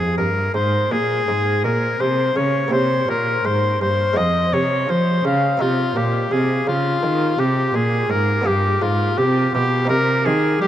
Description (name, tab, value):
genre	classical, baroque-style sonata movement with continuo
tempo	84 BPM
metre	4/4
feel	straight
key	F minor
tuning	A4 = 440 Hz
part	warm oboe	melody	0.0-10.7 s	F4 to F5	-19 LUFS	left 2 dB	none
part	buff-stop harpsichord	accompaniment	0.0-10.7 s	F2 to F4	-25 LUFS	right 1 dB	none
part	rich cello	bass	0.0-10.7 s	F2 to G3	-21 LUFS	right 1 dB	none
room	wet huge ambient reverb, RT60 7.9 s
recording	in a vast, echoing space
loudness	-16 LUFS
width	side -11 dB against mid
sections	0.0-10.7 A section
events	none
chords	0.0 Fm; 2.7 C7; 4.2 Fm; 5.6 Cm; 8.5 G7; 9.9 Cm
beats	0.55 1.28 2.01 | 2.72 3.45 4.17 4.89 | 5.61 6.32 7.04 7.75 | 8.47 9.19 9.90 10.61